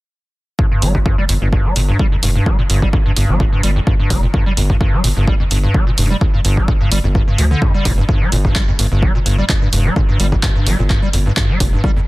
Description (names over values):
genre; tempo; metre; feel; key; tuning
acid house; 128 BPM; 4/4; swing 54% on 16ths; G minor; A4 = 440 Hz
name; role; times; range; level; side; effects
acid bass, square; riff; 0.6-12.0 s; F2 to G3; -18 LUFS; equal; overdrive, ensemble chorus, cassette tape, sidechain pumping, tape echo
electronic kick drum; drums; 0.6-11.9 s; none; -15 LUFS; equal; none
round analog bass; bass; 0.8-11.8 s; F1 to D2; -16 LUFS; equal; sidechain pumping
punchy analog drum machine; drums; 0.8-11.7 s; handclaps, hi-hat; -21 LUFS; right 1 dB; none
room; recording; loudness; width
little or no reverb; dense, heavily limited modern master; -12 LUFS; side -20 dB against mid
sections
0.6-12.1 A section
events
none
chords
0.6 G7(no3)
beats
| 0.59 1.06 1.52 1.99 | 2.46 2.93 3.40 3.87 | 4.34 4.81 5.28 5.74 | 6.21 6.68 7.15 7.62 | 8.09 8.56 9.03 9.49 | 9.96 10.43 10.90 11.37 | 11.84